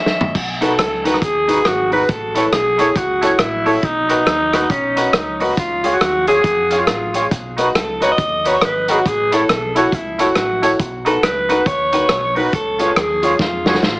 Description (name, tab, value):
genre	ska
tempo	138 BPM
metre	4/4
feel	swing 61% on 8ths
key	B mixolydian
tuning	A4 = 440 Hz
part	raspy alto saxophone	melody	0.0-14.0 s	C#4 to E5	-17 LUFS	equal	tape echo
part	vintage drum kit	drums	0.1-14.0 s	crash cymbal, hi-hat, kick drum, rim click, snare drum, toms	-20 LUFS	equal	none
part	fingered electric bass	bass	0.3-14.0 s	G#1 to E#2	-31 LUFS	equal	none
part	clean electric guitar	accompaniment	0.6-13.8 s	D#4 to C#5	-20 LUFS	right 1 dB	tremolo
part	dark upright piano	stabs	0.6-13.8 s	D#4 to E#5	-21 LUFS	left 1 dB	none
room	moderate studio ambience, RT60 0.5 s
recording	heavily compressed radio sound, small speaker sound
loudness	-14 LUFS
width	side -23 dB against mid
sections	0.3-14.0 A section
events	drum fill 0.0-0.3, 13.4-14.0; band accent 0.0-0.3; alto saxophone solo 0.3-14.0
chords	0.3 B; 2.1 A; 3.8 B; 5.6 C#; 7.3 B; 9.1 A; 10.8 B; 12.5 C#